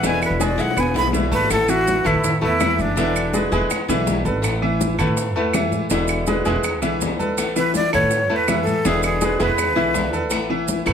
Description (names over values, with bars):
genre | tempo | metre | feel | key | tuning
latin, Cuban son and guajira | 164 BPM | 4/4 | straight | unclear | A4 = 444 Hz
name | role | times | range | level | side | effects
breathy jazz flute | melody | 0.0-3.5, 7.6-10.1 s | D4 to B5 | -21 LUFS | equal | none
flamenco guitar | accompaniment | 0.0-10.9 s | B2 to E4 | -26 LUFS | left 3 dB | none
bright concert grand piano | arpeggios | 0.0-10.9 s | E3 to B5 | -22 LUFS | equal | none
upright bass | bass | 0.0-10.9 s | E1 to A2 | -26 LUFS | right 1 dB | none
bongos | percussion | 0.0-10.9 s | none | -29 LUFS | left 6 dB | none
congas | percussion | 0.0-10.9 s | none | -28 LUFS | left 2 dB | none
maracas | percussion | 0.0-10.9 s | none | -31 LUFS | right 6 dB | none
claves | percussion | 0.2-10.9 s | none | -29 LUFS | right 4 dB | none
room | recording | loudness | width
moderate studio reverb, RT60 0.8 s | none | -17 LUFS | side -7 dB against mid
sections
0.0-1.5 A section; 1.5-10.9 B section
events
flute solo 0.0-1.5; drum fill 0.6-1.5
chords
0.0 E7; 1.5 Asus2; 3.0 E7; 4.4 Asus2; 5.9 E7; 7.4 Asus2; 8.8 E7; 10.3 Asus2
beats
| 0.04 0.40 0.77 1.14 | 1.50 1.87 2.24 2.60 | 2.97 3.34 3.70 4.07 | 4.44 4.80 5.17 5.54 | 5.91 6.27 6.64 7.01 | 7.38 7.74 8.11 8.48 | 8.84 9.21 9.58 9.95 | 10.31 10.68